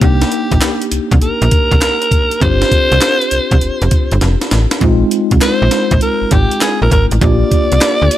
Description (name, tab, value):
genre	R&B, new jack swing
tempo	100 BPM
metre	4/4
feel	swing 67% on 16ths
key	unclear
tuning	A4 = 440 Hz
part	raspy alto saxophone	melody	0.0-8.2 s	G4 to D5	-16 LUFS	equal	none
part	tine electric piano	accompaniment	0.0-8.2 s	Ab3 to G4	-18 LUFS	equal	medium stereo tremolo
part	slap-like FM bass	bass	0.0-8.1 s	F1 to D2	-13 LUFS	equal	none
part	breakbeat sampler-style drum kit	drums	0.0-8.2 s	handclaps, hi-hat, kick drum, snare drum	-14 LUFS	equal	none
room	little or no reverb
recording	none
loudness	-10 LUFS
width	side -13 dB against mid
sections	0.0-4.8 A section; 4.8-8.2 B section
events	drum fill 4.2-4.8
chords	0.0 Cm7; 2.4 G7sus4; 4.8 Bb7sus4; 7.2 Gm7/Bb